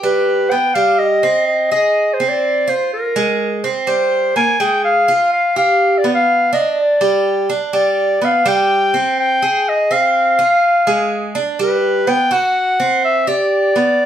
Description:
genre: latin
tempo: 124 BPM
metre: 4/4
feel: straight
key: unclear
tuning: A4 = 440 Hz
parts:
  - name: warm clarinet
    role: melody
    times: 0.0-14.1 s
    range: Bb4 to Ab5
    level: -14 LUFS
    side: left 1 dB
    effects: none
  - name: Cuban tres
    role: arpeggios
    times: 0.0-14.1 s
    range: G3 to Ab4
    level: -18 LUFS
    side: right 3 dB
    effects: none
room: moderate studio ambience, RT60 0.5 s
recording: studio reverb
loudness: -13 LUFS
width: side -10 dB against mid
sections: 0.0-14.1 A section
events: none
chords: 0.0 G; 1.0 Cm; 2.0 Fm; 2.9 Bb5; 3.9 C5; 4.9 Fmadd9/Ab; 5.8 G; 8.7 C5; 9.7 Fm; 10.6 Ddim; 11.6 G; 12.6 D9; 13.5 G

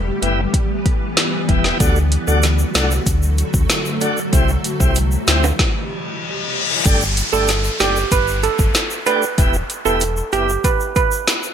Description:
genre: dancehall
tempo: 95 BPM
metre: 4/4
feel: straight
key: G major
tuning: A4 = 441 Hz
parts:
  - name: granular cloud pad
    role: sustained chords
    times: 0.0-5.6 s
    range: D3 to B4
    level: -24 LUFS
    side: left 1 dB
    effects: built-in reverb, ensemble chorus, sidechain pumping
  - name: sub bass with octave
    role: bass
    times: 0.0-10.6 s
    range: E1 to D2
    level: -19 LUFS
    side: equal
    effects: none
  - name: tonewheel organ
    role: accompaniment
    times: 0.2-10.5 s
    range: A3 to G4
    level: -23 LUFS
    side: equal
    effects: fast rotary speaker, sidechain pumping
  - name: afro-pop drum kit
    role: drums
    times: 0.2-11.4 s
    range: hi-hat, kick drum, snare drum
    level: -18 LUFS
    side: equal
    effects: gated reverb
  - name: tube shaker and timbales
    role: percussion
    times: 1.8-11.5 s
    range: none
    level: -27 LUFS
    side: right 2 dB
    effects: none
  - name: reverse cymbal and downlifter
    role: sound effects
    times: 5.9-11.5 s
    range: none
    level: -24 LUFS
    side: left 3 dB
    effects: none
  - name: steel pan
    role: melody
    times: 7.3-11.1 s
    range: G4 to B4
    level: -19 LUFS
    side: right 8 dB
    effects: ping-pong delay
room: light reverb, digital ambience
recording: bright 1980s-style digital production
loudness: -15 LUFS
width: side -8 dB against mid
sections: 0.0-6.9 A section; 6.9-11.5 B section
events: stop 5.6-6.9; reverse cymbal 5.9-6.9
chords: 0.0 Em; 1.8 D; 4.3 C; 6.9 Gsus2; 9.4 Em

